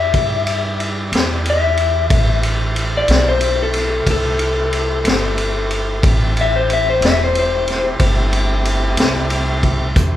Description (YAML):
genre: slow blues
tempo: 61 BPM (dotted quarters)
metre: 12/8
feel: straight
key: A minor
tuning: A4 = 440 Hz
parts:
  - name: electric guitar through a small old amp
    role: melody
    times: 0.0-8.0 s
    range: A4 to E5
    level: -18 LUFS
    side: left 4 dB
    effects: none
  - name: tonewheel organ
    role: sustained chords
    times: 0.0-10.2 s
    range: A3 to D5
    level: -26 LUFS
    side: right 1 dB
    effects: overdrive
  - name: upright bass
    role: bass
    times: 0.0-10.2 s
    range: E1 to G2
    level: -19 LUFS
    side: equal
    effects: none
  - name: vintage drum kit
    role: drums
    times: 0.1-10.1 s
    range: hi-hat, kick drum, ride cymbal, snare drum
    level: -18 LUFS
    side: equal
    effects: none
room: moderate large studio reverb, RT60 1.4 s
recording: band playing live in one room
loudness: -14 LUFS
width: side -12 dB against mid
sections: 0.0-10.0 A section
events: clean electric guitar solo 0.0-10.0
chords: 0.0 E7#9; 2.1 Am7